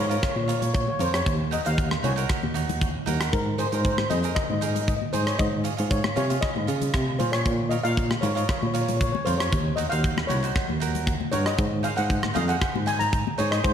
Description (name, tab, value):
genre	calypso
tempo	116 BPM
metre	4/4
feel	straight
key	unclear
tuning	A4 = 440 Hz
part	steel pan	melody	0.0-13.7 s	Bb4 to Bb5	-29 LUFS	left 2 dB	slapback echo, analog delay
part	cavaquinho	accompaniment	0.0-13.7 s	Eb4 to Eb5	-33 LUFS	right 8 dB	slapback echo
part	overdriven tine electric piano	bass	0.0-13.7 s	C2 to Db3	-26 LUFS	equal	fast tremolo
part	tight metal drum kit	drums	0.1-13.7 s	hi-hat, kick drum, rim click	-27 LUFS	equal	none
part	congas	percussion	0.6-13.5 s	none	-34 LUFS	left 10 dB	none
room	light reverb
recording	none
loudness	-22 LUFS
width	side -8 dB against mid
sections	0.0-13.7 A section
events	none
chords	0.0 Bbm; 1.3 Ebm; 3.3 Abadd9; 5.4 Dbadd9/Ab; 7.5 Bbm; 9.5 Ebm; 11.6 Ab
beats	0.23 0.75 | 1.26 1.78 2.30 2.81 | 3.33 3.85 4.36 4.88 | 5.39 5.91 6.43 6.94 | 7.46 7.97 8.49 9.01 | 9.52 10.04 10.55 11.07 | 11.59 12.10 12.62 13.13 | 13.64